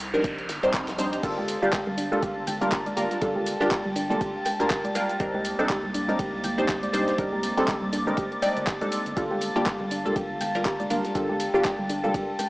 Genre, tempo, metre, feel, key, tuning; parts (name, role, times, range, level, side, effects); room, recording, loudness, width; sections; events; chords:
deep house; 121 BPM; 4/4; swing 57% on 16ths; G minor; A4 = 440 Hz
round analog bass; bass; 0.0-12.1 s; F1 to D2; -41 LUFS; equal; sidechain pumping
deep house drum kit; drums; 0.0-12.5 s; crash cymbal, handclaps, hi-hat, shaker; -33 LUFS; equal
noise sweep; sound effects; 0.0-1.2 s; -36 LUFS; right 1 dB
warm studio violin section; texture; 0.0-12.5 s; F6 to A6; -37 LUFS; equal; sidechain pumping
filtered dub chord stab; stabs; 0.1-12.4 s; G3 to D5; -26 LUFS; equal; phaser, wide subtle chorus, cassette tape, sidechain pumping, digital delay
electronic kick drum; drums; 0.2-12.3 s; -32 LUFS; equal
vintage drum kit; drums; 0.2-12.5 s; ride cymbal, snare drum; -41 LUFS; equal
warbly tape-like pad; sustained chords; 1.5-12.5 s; Bb3 to D6; -33 LUFS; equal; chorus, built-in reverb, sidechain pumping
soft round pluck; arpeggios; 1.2-12.5 s; G3 to G5; -32 LUFS; equal; chorus, cassette tape, sidechain pumping, digital delay
bongos and congas; percussion; 1.4-12.5 s; -36 LUFS; equal; sidechain pumping on perc
moderate lush hall reverb, RT60 2.0 s; small speaker sound; -23 LUFS; side -21 dB against mid
0.0-12.5 A section
noise sweep 0.0-1.2
0.0 Cm9; 1.2 Gm9; 5.2 Cm9; 9.2 Gm9